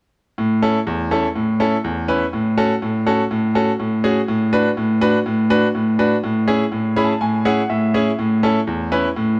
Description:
pop; 123 BPM; 4/4; straight; A major; A4 = 441 Hz
bright grand piano; solo; 0.4-9.4 s; E2 to B5; -18 LUFS; equal
wet plate reverb, RT60 3.3 s; dark, warm production; -18 LUFS; mono
0.4-9.4 A section
grand piano fill 6.7-8.2
0.4 A; 2.3 F#m/A; 4.3 Bm7/A; 6.2 C#m/A; 8.2 A
| 0.38 0.87 1.36 1.84 | 2.33 2.82 3.31 3.79 | 4.28 4.77 5.26 5.75 | 6.23 6.72 7.21 7.70 | 8.19 8.67 9.16

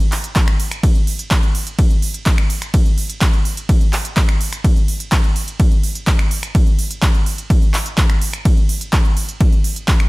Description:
EDM; 126 BPM; 4/4; straight
big-room dance drum kit; drums; 0.0-10.1 s; finger snaps, handclaps, hi-hat, ride cymbal; -23 LUFS; right 1 dB; overdrive
electronic kick drum; drums; 0.4-10.0 s; -14 LUFS; equal; overdrive
little or no reverb; -14 LUFS; side -22 dB against mid
0.0-10.1 A section
0.36 0.83 1.31 | 1.79 2.26 2.74 3.21 | 3.69 4.17 4.64 5.12 | 5.60 6.07 6.55 7.03 | 7.50 7.98 8.45 8.93 | 9.41 9.88

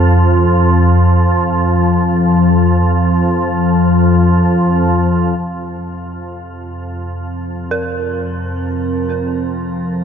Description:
dark ambient drone; free time; A4 = 440 Hz
deep dark ambient pad; sustained chords; 0.0-10.0 s; F3 to F5; -23 LUFS; right 2 dB; chorus, built-in reverb, shimmer reverb
organ-like drone; drone; 0.0-10.0 s; F2 to F3; -13 LUFS; left 1 dB; ensemble chorus, built-in reverb
quartz singing bowl; texture; 5.4-10.0 s; F3 to F4; -39 LUFS; right 2 dB
dark detuned synth bell; arpeggios; 7.7-10.0 s; Bb4; -23 LUFS; right 4 dB; chorus, diffuse ambient delay, shimmer reverb
wet cathedral reverb, RT60 5.3 s; cassette tape; -11 LUFS; side -8 dB against mid
0.0-5.4 A section; 5.4-10.0 B section
0.0 F5
free time

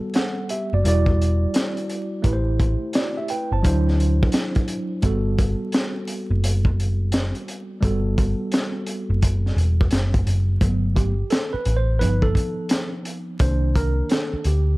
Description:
hip hop, jazz-hop; 86 BPM; 4/4; swing 66% on 16ths; G major; A4 = 439 Hz
tine electric piano; accompaniment; 0.0-14.8 s; Eb3 to A5; -26 LUFS; right 1 dB; medium stereo tremolo
crunchy breakbeat drum kit; drums; 0.1-14.7 s; hi-hat, kick drum, snare drum; -22 LUFS; equal
hollow-body short-scale picked electric bass; bass; 0.7-14.8 s; E1 to D2; -20 LUFS; equal
small room ambience; dark, warm production, vinyl crackle; -19 LUFS; side -21 dB against mid
0.0-10.6 A section; 10.6-14.8 B section
tine electric piano solo 10.6-14.8
0.0 Gmaj9; 0.8 Em9; 2.2 Am7; 3.6 D9; 5.0 Gmaj9; 12.0 G7b13; 13.4 Cm7
0.15 0.85 1.55 | 2.24 2.94 3.64 4.34 | 5.03 5.73 6.43 7.13 | 7.83 8.52 9.22 9.92 | 10.62 11.31 12.01 12.71 | 13.41 14.10

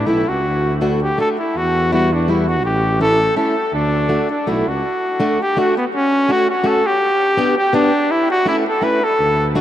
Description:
alpine folk, alpine dance band; 165 BPM; 3/4; straight; D major; A4 = 440 Hz
clear flugelhorn; melody; 0.0-9.5 s; B3 to B4; -16 LUFS; equal
mellow tuba; bass; 0.0-4.8, 9.2-9.6 s; A1 to E2; -20 LUFS; equal
fingerpicked plugged-in old ladder-braced acoustic guitar; accompaniment; 0.1-9.6 s; G3 to G4; -20 LUFS; equal
wet huge ambient reverb, RT60 8.8 s; in a vast, echoing space; -14 LUFS; side -11 dB against mid
0.0-4.8 A section; 4.8-9.6 A section
0.5 D; 1.6 Em; 2.6 A7; 3.7 D; 5.9 F#m; 7.0 G; 8.1 A
0.08 | 0.46 0.82 1.19 | 1.55 1.92 2.28 | 2.64 3.00 3.37 | 3.73 4.09 4.47 | 4.84 5.21 5.57 | 5.94 6.30 6.66 | 7.01 7.37 7.73 | 8.09 8.46 8.82 | 9.19 9.56

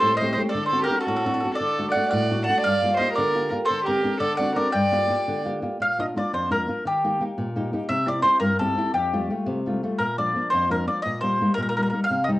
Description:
italian folk, Italian serenade; 114 BPM (dotted quarters); 6/8; rubato; G minor, Bb major from 5.8 s; A4 = 444 Hz
mandolin; melody; 0.0-12.3 s; G4 to A5; -24 LUFS; left 1 dB
rich violin; second line; 0.0-5.4 s; F#4 to F#5; -24 LUFS; right 3 dB; cassette tape
flamenco guitar; accompaniment; 0.0-12.4 s; F2 to G4; -26 LUFS; left 1 dB; cassette tape
wet studio ambience, RT60 0.5 s; home recording on cassette; -21 LUFS; side -17 dB against mid
0.0-5.8 A section; 5.8-12.4 B section
0.0 Am7b5; 0.5 D7; 1.6 D; 2.6 Gm7; 3.7 D7sus4; 4.2 D7; 4.7 Gm7; 5.8 Bb; 6.9 Eb; 7.9 C; 8.9 Fadd9; 10.0 Bb; 11.0 Eb/Bb
0.01 | 0.53 1.05 | 1.59 2.12 | 2.64 3.17 | 3.69 4.22 | 4.74 5.28 | 5.81 6.33 | 6.86 7.38 | 7.89 8.41 | 8.93 9.46 | 9.99 10.52 | 11.05 11.57 | 12.10

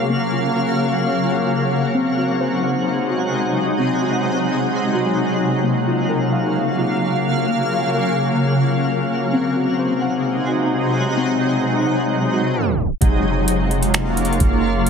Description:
hip hop, atmospheric cloud-rap; 130 BPM; 4/4; half-time; Gb lydian; A4 = 436 Hz
shimmering ambient pad; sustained chords; 0.0-14.9 s; C3 to F5; -18 LUFS; equal; chorus, built-in reverb, sidechain pumping
muted felt-like synth keys; arpeggios; 0.0-13.0 s; Bb3 to Gb5; -24 LUFS; left 1 dB; chorus, low-pass filter, ping-pong delay
twinkling granular texture; texture; 0.0-13.0 s; Bb3 to Gb5; -28 LUFS; equal; built-in reverb
soft 808-style bass; bass; 13.0-14.9 s; F1 to Gb1; -22 LUFS; equal
booming analog drum machine; drums; 13.0-14.9 s; finger snaps, hi-hat, kick drum; -18 LUFS; right 1 dB
light reverb; heavily compressed radio sound, tape stop; -17 LUFS; side -6 dB against mid
0.0-13.0 A section; 13.0-14.9 B section
tape stop 12.6-13.0
0.0 Gbmaj7; 1.9 Ab7; 5.6 Gbmaj7; 9.3 Ab7; 13.0 Gbmaj7
| 0.09 0.56 1.02 1.48 | 1.94 2.40 2.86 3.33 | 3.79 4.25 4.71 5.17 | 5.63 6.09 6.56 7.02 | 7.48 7.94 8.40 8.86 | 9.32 9.79 10.25 10.71 | 11.17 11.63 12.09 12.56 | 13.02 13.48 13.94 14.40 | 14.86

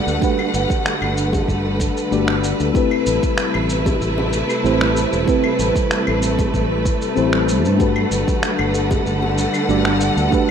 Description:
sunset chillout; 95 BPM; 4/4; straight; G major; A4 = 440 Hz
mellow FM electric piano; accompaniment; 0.0-10.5 s; A3 to D5; -21 LUFS; moving between left 9 dB and right 7 dB; chorus, auto-pan, digital delay
rich studio string section; sustained chords; 0.0-10.5 s; C3 to F#5; -21 LUFS; equal
wind-like tuned noise texture; texture; 0.0-10.5 s; A4 to A5; -28 LUFS; left 2 dB; built-in reverb
fretless electric bass; bass; 0.1-10.3 s; E1 to G2; -22 LUFS; right 1 dB
electronic shaker, claves and finger snaps; drums; 0.1-10.5 s; -26 LUFS; equal
electronic kick drum; drums; 0.2-10.5 s; -21 LUFS; right 1 dB
bongos; percussion; 1.3-9.3 s; -28 LUFS; left 2 dB
light reverb; rough home demo mix; -16 LUFS; side -7 dB against mid
0.0-10.5 A section
0.0 Gmaj9; 2.8 Am9; 7.8 Gmaj9
| 0.22 0.85 1.49 2.12 | 2.75 3.38 4.01 4.64 | 5.28 5.91 6.54 7.17 | 7.80 8.43 9.07 9.70 | 10.33

